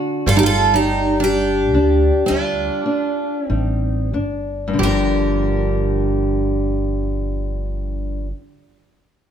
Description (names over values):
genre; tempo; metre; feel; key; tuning
fado-style ballad; 45-66 BPM; 4/4; rubato; G minor; A4 = 435 Hz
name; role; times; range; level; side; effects
nylon-string guitar; accompaniment; 0.0-8.4 s; G2 to D5; -22 LUFS; left 4 dB; none
picked twelve-string acoustic guitar; melody; 0.3-8.3 s; F4 to Bb4; -21 LUFS; equal; none
picked twelve-string acoustic guitar; second line; 0.3-8.3 s; D4 to G4; -22 LUFS; right 6 dB; none
upright bass; bass; 0.3-8.3 s; G1 to D2; -21 LUFS; equal; none
room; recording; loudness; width
light reverb; none; -16 LUFS; side -8 dB against mid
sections
0.0-4.8 A section; 4.8-9.3 B section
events
slowing down 0.0-4.8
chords
0.3 G5; 4.8 Gm7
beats
| 0.29 1.24 2.30 3.50 | 4.80 6.10 7.36